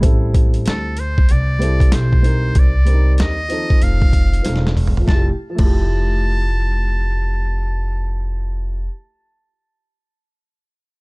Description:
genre	hip hop, jazz-hop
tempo	95 BPM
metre	4/4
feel	swing 63% on 16ths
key	F major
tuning	A4 = 440 Hz
part	dark upright piano	accompaniment	0.0-8.9 s	F3 to Bb4	-25 LUFS	equal	none
part	upright bass	bass	0.0-8.9 s	E1 to Eb2	-18 LUFS	equal	none
part	boom bap sampler-style drum kit	drums	0.0-5.7 s	crash cymbal, hi-hat, kick drum, snare drum, toms	-15 LUFS	equal	none
part	trumpet with metal mute	melody	0.7-8.4 s	A4 to A5	-26 LUFS	equal	plate reverb
room	little or no reverb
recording	dark, warm production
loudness	-14 LUFS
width	side -28 dB against mid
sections	0.0-5.1 A section; 5.1-7.6 B section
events	drum fill 4.4-5.1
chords	0.0 Am7; 2.6 Cm7; 3.8 F7; 5.1 Fmaj9

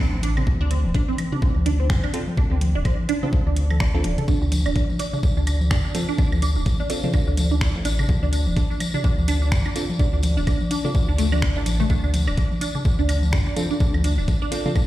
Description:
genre	minimal techno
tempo	126 BPM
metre	4/4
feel	swing 58% on 16ths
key	D minor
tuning	A4 = 438 Hz
part	resonant blip pluck	riff	0.0-14.8 s	A3 to A4	-28 LUFS	right 2 dB	phaser, analog chorus, sidechain pumping, digital delay
part	rubbery square bass	bass	0.0-14.9 s	D1 to G2	-21 LUFS	equal	sidechain pumping
part	electronic toms and woodblock	percussion	0.1-14.9 s	none	-28 LUFS	left 1 dB	overdrive, small room reverb, ping-pong delay
part	garage drum kit	drums	0.2-14.6 s	finger snaps, hi-hat	-33 LUFS	right 1 dB	overdrive, small room reverb
part	electronic kick drum	drums	0.5-14.9 s	none	-21 LUFS	equal	overdrive, small room reverb
part	wavetable chord stab	stabs	2.1-14.7 s	C4 to A4	-32 LUFS	right 1 dB	ping-pong delay
part	tambourine	percussion	4.3-14.9 s	none	-34 LUFS	left 3 dB	none
room	digital ambience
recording	played on a big sound system in a bare room, large studio reverb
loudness	-19 LUFS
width	side -15 dB against mid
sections	0.0-14.9 A section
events	none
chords	0.0 D5

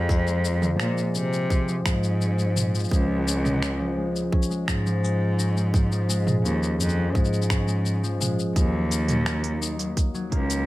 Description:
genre	folktronica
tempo	85 BPM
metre	4/4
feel	straight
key	unclear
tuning	A4 = 440 Hz
part	concert harp	arpeggios	0.0-10.7 s	F3 to Eb4	-26 LUFS	left 1 dB	low-pass filter, ping-pong delay
part	clear cello	bass	0.0-10.7 s	Db2 to C3	-25 LUFS	equal	none
part	electronic kick drum	drums	0.1-10.5 s	none	-23 LUFS	equal	none
part	organic electronic drum kit	drums	0.1-10.6 s	finger snaps, hi-hat, shaker, toms	-29 LUFS	equal	none
room	light reverb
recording	none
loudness	-21 LUFS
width	side -17 dB against mid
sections	0.0-10.7 A section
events	filter sweep on harp 0.0-10.7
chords	0.0 Ab6; 2.9 Db; 8.6 Ebm

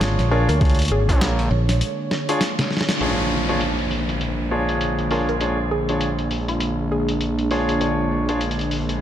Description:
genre	glitch hop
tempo	100 BPM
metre	4/4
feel	swing 60% on 16ths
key	unclear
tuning	A4 = 440 Hz
part	warm analog pad	sustained chords	0.0-9.0 s	D3 to C#5	-26 LUFS	right 1 dB	chorus, sidechain pumping
part	clear baby grand piano	stabs	0.0-8.4 s	D4 to C#5	-25 LUFS	equal	sidechain pumping, low-pass filter, tape echo
part	fingered electric bass	bass	0.0-1.8 s	Ab1 to D2	-19 LUFS	equal	none
part	boom bap sampler-style drum kit	drums	0.0-9.0 s	crash cymbal, hi-hat, snare drum	-26 LUFS	left 1 dB	low-pass filter on hats, small room reverb, low-pass filter on snare, low-pass filter on cymbals
part	woody wave-folded pluck	melody	0.3-1.1, 5.1-7.5 s	F4 to Bb4	-29 LUFS	left 2 dB	chorus, tape echo
part	electronic kick drum	drums	0.6-1.2 s	none	-18 LUFS	equal	small room reverb
part	gritty driven synth bass	bass	1.1-9.0 s	Bb1	-25 LUFS	equal	distortion, tube saturation
part	downlifter and riser	sound effects	3.0-9.0 s	none	-30 LUFS	right 1 dB	none
room	moderate lush hall reverb, RT60 1.9 s, digital ambience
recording	dreamy mix soaked in reverb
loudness	-18 LUFS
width	side -10 dB against mid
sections	0.0-3.0 A section; 3.0-9.0 B section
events	break 1.8-3.0; drum fill 2.1-3.0; band accent 2.9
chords	0.0 Bb7#9

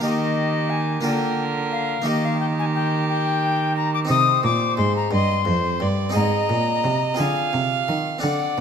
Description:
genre	classical, baroque-style sonata movement with continuo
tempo	59 BPM (dotted quarters)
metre	6/8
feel	straight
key	Eb major, C minor from 4.1 s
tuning	A4 = 438 Hz
part	alto recorder	melody	0.0-8.6 s	Eb5 to Eb6	-24 LUFS	left 8 dB	none
part	rich violin	second line	0.0-8.6 s	G4 to F5	-27 LUFS	right 8 dB	none
part	harpsichord	accompaniment	0.0-8.6 s	F2 to Bb4	-26 LUFS	left 2 dB	none
part	warm cello	bass	0.0-8.6 s	F2 to Eb3	-24 LUFS	right 2 dB	none
room	moderate recital hall reverb, RT60 1.7 s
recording	none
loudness	-19 LUFS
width	side -7 dB against mid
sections	0.0-8.6 A section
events	none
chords	0.0 Eb; 1.1 Bb/D; 2.1 Eb; 4.1 Cm; 6.2 Ab; 7.2 Dm7b5

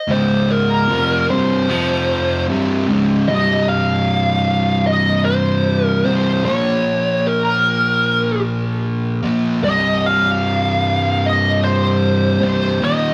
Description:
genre	metal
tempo	76 BPM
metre	4/4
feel	straight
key	C phrygian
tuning	A4 = 439 Hz
part	fuzz lead guitar	melody	0.0-13.1 s	Bb4 to F5	-20 LUFS	equal	wah, distortion
part	fuzz guitar	riff	0.1-13.1 s	C2 to Bb3	-19 LUFS	equal	distortion
room	moderate large studio reverb, RT60 1.1 s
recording	band playing live in one room, vinyl crackle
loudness	-17 LUFS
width	mono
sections	0.0-3.3 A section; 3.3-13.1 B section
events	none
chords	0.1 Db5; 0.9 C5; 1.7 F5; 2.5 C5; 6.5 Bbm; 9.6 C5

